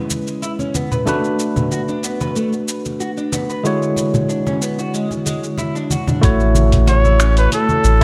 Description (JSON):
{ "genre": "sunset chillout", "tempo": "93 BPM", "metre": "4/4", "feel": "straight", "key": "unclear", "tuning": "A4 = 442 Hz", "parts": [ { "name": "barky tine electric piano", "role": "accompaniment", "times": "0.0-8.0 s", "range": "D3 to C#5", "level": "-23 LUFS", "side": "equal", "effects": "digital delay" }, { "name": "dusty soul sampler-style drum kit", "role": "drums", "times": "0.1-8.0 s", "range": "cabasa, finger snaps, hi-hat", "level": "-29 LUFS", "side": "equal", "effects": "none" }, { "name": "congas", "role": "percussion", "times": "0.1-8.0 s", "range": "none", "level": "-26 LUFS", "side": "equal", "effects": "none" }, { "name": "electric guitar at the edge of break-up", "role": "arpeggios", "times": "0.4-7.7 s", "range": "G#3 to C#5", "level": "-28 LUFS", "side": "equal", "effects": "harmonic tremolo, digital delay" }, { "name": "round analog bass", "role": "bass", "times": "6.2-8.0 s", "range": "A1", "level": "-15 LUFS", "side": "equal", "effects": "none" }, { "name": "electronic kick drum", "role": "drums", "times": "6.2-8.0 s", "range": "none", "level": "-18 LUFS", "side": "equal", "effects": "none" }, { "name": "warm flugelhorn", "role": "melody", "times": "6.9-8.0 s", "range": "A4 to C#5", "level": "-19 LUFS", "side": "equal", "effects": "none" } ], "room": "light reverb, digital ambience", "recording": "none", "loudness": "-18 LUFS", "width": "mono", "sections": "0.0-6.2 A section; 6.2-8.0 B section", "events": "none", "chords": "0.0 C#m7; 1.1 Bm7; 3.7 E13; 6.2 A6", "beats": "0.42 | 1.07 1.72 2.36 3.00 | 3.65 4.30 4.94 5.59 | 6.23 6.88 7.52" }